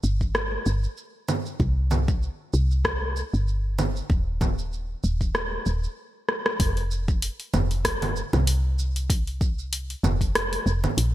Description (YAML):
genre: organic downtempo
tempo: 96 BPM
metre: 4/4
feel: swing 56% on 16ths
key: unclear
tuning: A4 = 440 Hz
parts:
  - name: woody FM bass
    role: bass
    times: 0.0-11.1 s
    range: Eb1 to C2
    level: -24 LUFS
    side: equal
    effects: none
  - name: deep house drum kit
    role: drums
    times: 0.0-11.1 s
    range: congas, hi-hat, rim click, shaker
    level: -27 LUFS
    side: right 1 dB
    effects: gated reverb
  - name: electronic kick drum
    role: drums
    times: 0.2-10.3 s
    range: none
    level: -25 LUFS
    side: equal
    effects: none
room: little or no reverb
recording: bright 1980s-style digital production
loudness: -23 LUFS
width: side -14 dB against mid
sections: 0.0-6.6 A section; 6.6-11.1 B section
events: drum fill 6.3-6.6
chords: none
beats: 0.35 0.97 | 1.60 2.22 2.85 3.47 | 4.10 4.72 5.35 5.97 | 6.60 7.22 7.85 8.47 | 9.10 9.72 10.35 10.97